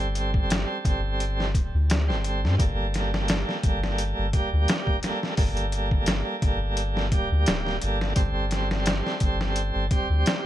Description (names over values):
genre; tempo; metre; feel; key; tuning
trip hop; 86 BPM; 4/4; swing 54% on 16ths; G minor; A4 = 440 Hz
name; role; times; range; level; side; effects
bright tonewheel organ; accompaniment; 0.0-10.5 s; G3 to A4; -29 LUFS; right 2 dB; overdrive, stopped rotary speaker, tremolo, tape echo
soft dub sub bass; bass; 0.0-10.2 s; D1 to G2; -26 LUFS; equal; none
trip hop sampler-style drum kit; drums; 0.0-10.4 s; hi-hat, kick drum, snare drum; -25 LUFS; equal; none
room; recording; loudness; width
digital ambience; none; -22 LUFS; side -13 dB against mid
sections
0.0-10.5 A section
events
none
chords
0.0 D7sus4; 2.6 Gmadd9; 8.2 D7sus4 (rootless)